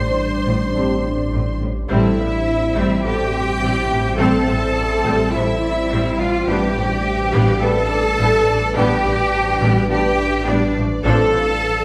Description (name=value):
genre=cinematic, hybrid orchestral and electronic film score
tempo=105 BPM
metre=4/4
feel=straight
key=A minor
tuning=A4 = 440 Hz
part: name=warm symphonic violin section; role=melody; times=0.0-11.8 s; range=B4 to C6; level=-36 LUFS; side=equal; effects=none
part: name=rich symphonic violin section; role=second line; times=0.0-11.8 s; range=C5 to A5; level=-29 LUFS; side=equal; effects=none
part: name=rich symphonic viola section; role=accompaniment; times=0.0-11.4 s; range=E3 to C5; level=-26 LUFS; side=equal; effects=none
part: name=deep dark ambient pad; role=sustained chords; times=0.0-11.8 s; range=F3 to E5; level=-26 LUFS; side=equal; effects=chorus, built-in reverb, phaser
part: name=dark detuned saw bass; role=bass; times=0.0-11.8 s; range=A1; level=-27 LUFS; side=equal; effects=none
part: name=clear symphonic double bass section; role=bass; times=0.5-11.4 s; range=A1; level=-25 LUFS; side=equal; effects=none
part: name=rich symphonic cello section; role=bass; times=0.5-11.8 s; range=A2 to A4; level=-22 LUFS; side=equal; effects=none
part: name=warm French horn section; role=sustained chords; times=0.8-11.2 s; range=C4 to B4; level=-29 LUFS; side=equal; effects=none
part: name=warm trombone section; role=sustained chords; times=0.8-11.2 s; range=F3 to C4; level=-29 LUFS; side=equal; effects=none
room=wet recital hall reverb, RT60 1.3 s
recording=recorded in a church or concert hall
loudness=-18 LUFS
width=mono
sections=0.0-1.9 A section; 1.9-11.8 B section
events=none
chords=0.0 Csus2/A; 1.9 Am7; 6.5 G/A; 11.0 Dm7/A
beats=0.19 0.76 1.33 | 1.90 2.47 3.04 3.62 | 4.19 4.76 5.33 5.90 | 6.47 7.04 7.62 8.19 | 8.76 9.33 9.90 10.47 | 11.04 11.62